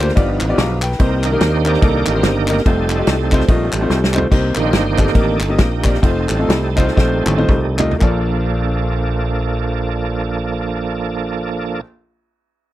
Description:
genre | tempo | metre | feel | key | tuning
uptempo gospel | 108-145 BPM | 4/4 | swing 60% on 8ths | Bb major | A4 = 437 Hz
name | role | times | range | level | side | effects
warm concert grand piano | accompaniment | 0.0-11.8 s | Bb1 to D6 | -21 LUFS | left 2 dB | none
bright tonewheel organ | sustained chords | 0.0-11.8 s | Eb3 to Eb5 | -21 LUFS | right 4 dB | slow rotary speaker, overdrive, chorus vibrato
fingered electric bass | bass | 0.0-11.8 s | F1 to Eb2 | -20 LUFS | equal | none
natural country drum kit | drums | 0.0-8.2 s | crash cymbal, kick drum, ride cymbal, snare drum, toms | -16 LUFS | equal | none
group handclap | percussion | 0.0-8.3 s | none | -25 LUFS | left 2 dB | none
room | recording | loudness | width
little or no reverb | dry, close 1970s-style studio recording | -14 LUFS | side -14 dB against mid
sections
0.0-4.3 A section; 4.3-8.0 B section; 8.0-12.4 C section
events
tonewheel organ solo 0.0-4.3, 4.3-8.0; drum fill 3.9-4.3, 7.0-8.0; slowing down 4.3-8.0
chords
0.2 G7b13; 1.0 Cm7; 2.7 F7; 4.3 Cm7; 6.0 F7; 8.0 Bbmaj7

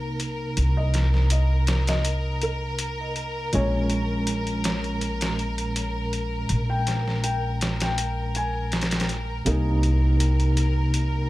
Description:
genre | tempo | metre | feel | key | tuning
trip hop | 81 BPM | 4/4 | straight | C phrygian | A4 = 440 Hz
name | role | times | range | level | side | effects
barky tine electric piano | accompaniment | 0.0-11.3 s | Bb2 to Eb4 | -29 LUFS | equal | medium stereo tremolo, tape echo
warm studio violin section | sustained chords | 0.0-11.3 s | Bb4 | -33 LUFS | equal | none
upright bass | bass | 0.0-11.3 s | Bb1 to C2 | -24 LUFS | equal | none
trip hop sampler-style drum kit | drums | 0.2-11.1 s | hi-hat, snare drum | -28 LUFS | equal | high-pass filter on hats, high-pass filter on snare, high-pass filter on kick, high-pass filter on room
felt-muted upright piano | melody | 0.8-10.0 s | Bb4 to Ab5 | -32 LUFS | left 2 dB | dub echo
room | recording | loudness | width
studio reverb | none | -22 LUFS | side -17 dB against mid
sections
0.0-11.3 A section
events
none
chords
0.0 Cm7; 3.5 Bbm7; 9.5 Cm7

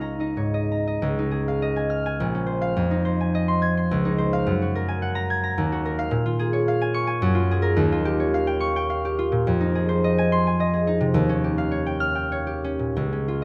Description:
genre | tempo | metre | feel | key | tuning
classical, solo harp piece | 85-111 BPM | 3/4 | rubato | unclear | A4 = 440 Hz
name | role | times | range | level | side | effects
concert harp | solo | 0.0-13.4 s | Bb1 to Ab6 | -23 LUFS | equal | none
room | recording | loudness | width
moderate recital hall reverb, RT60 1.4 s | close, detailed microphones | -23 LUFS | mono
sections
0.0-1.0 A section; 1.0-13.4 B section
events
none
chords
0.0 Db69; 1.0 Dbadd9; 2.2 Bbmadd9; 2.8 Fm7; 3.9 Dbmaj9; 4.5 Gbadd9; 5.6 Ebmadd9; 6.1 Bbm7; 7.2 Gbmaj9; 7.8 Eb9; 9.5 Fm7; 11.2 Eb9

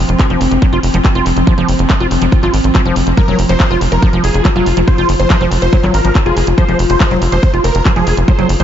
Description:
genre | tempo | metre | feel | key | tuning
psychedelic trance | 141 BPM | 4/4 | straight | F phrygian | A4 = 440 Hz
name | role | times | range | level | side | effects
pulsing gated texture | sustained chords | 0.0-8.6 s | F3 to F4 | -18 LUFS | left 2 dB | chorus, built-in reverb, sidechain pumping
tight sequencer bass | bass | 0.0-8.6 s | F1 to Ab1 | -14 LUFS | equal | none
garage drum kit | drums | 0.1-8.6 s | handclaps, hi-hat | -22 LUFS | equal | studio reverb
liquid acid bass | riff | 0.2-8.6 s | F3 to F4 | -18 LUFS | moving between left 4 dB and right 6 dB | chorus, auto-pan, sidechain pumping, diffuse ambient delay
electronic kick drum | drums | 0.2-8.4 s | none | -12 LUFS | equal | studio reverb
dense compressed supersaw | melody | 3.2-8.6 s | F4 to C5 | -18 LUFS | right 1 dB | phaser, cassette tape, sidechain pumping, diffuse ambient delay
room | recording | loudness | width
light reverb, digital ambience | nothing above 7.6 kHz | -10 LUFS | side -10 dB against mid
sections
0.0-8.6 A section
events
filter sweep on acid bass 0.0-8.6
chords
0.0 F5

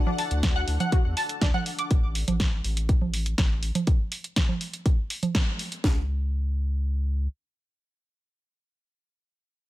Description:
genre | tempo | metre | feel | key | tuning
melodic techno | 122 BPM | 4/4 | straight | unclear | A4 = 440 Hz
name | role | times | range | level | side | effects
lush unison pad | sustained chords | 0.0-1.9 s | D4 to F#5 | -37 LUFS | left 4 dB | chorus, phaser, sidechain pumping
round analog bass | bass | 0.0-7.3 s | A1 to E2 | -27 LUFS | equal | tube saturation, sidechain pumping
tight sequenced synth | arpeggios | 0.1-1.8 s | D4 to A6 | -30 LUFS | left 1 dB | chorus, vintage 12-bit sampler grit, sidechain pumping, digital delay
punchy analog drum machine | drums | 0.1-5.8 s | congas, hi-hat, snare drum | -29 LUFS | right 3 dB | sidechain pumping on hats, sidechain pumping on perc
house drum kit | drums | 0.4-6.0 s | kick drum, snare drum | -23 LUFS | equal | none
room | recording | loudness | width
little or no reverb | none | -23 LUFS | side -16 dB against mid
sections
0.0-5.8 A section; 5.8-9.7 B section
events
drop 0.0-5.8; band accent 5.3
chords
0.0 D; 1.9 N.C.

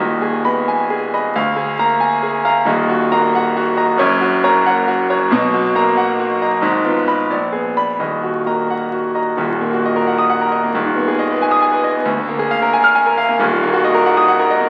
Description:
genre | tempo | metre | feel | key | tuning
classical, virtuoso piano study | 90 BPM (dotted quarters) | 6/8 | rubato | Eb minor | A4 = 440 Hz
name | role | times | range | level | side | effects
clear concert grand piano | solo | 0.0-14.7 s | Eb1 to F6 | -16 LUFS | equal | none
room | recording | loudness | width
wet recital hall reverb, RT60 1.6 s | very old 78 rpm record, vinyl crackle | -16 LUFS | mono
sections
0.0-9.4 A section; 9.4-14.7 B section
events
none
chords
0.0 Abm/Eb; 1.3 Bb7/D; 2.7 Ebm; 4.0 Gb; 5.3 Bmaj7; 6.6 Fm7b5/Ab; 7.3 Bb7b9; 8.0 Ebm; 10.7 Abm/Eb; 12.1 Bb7/D; 13.4 Ebm

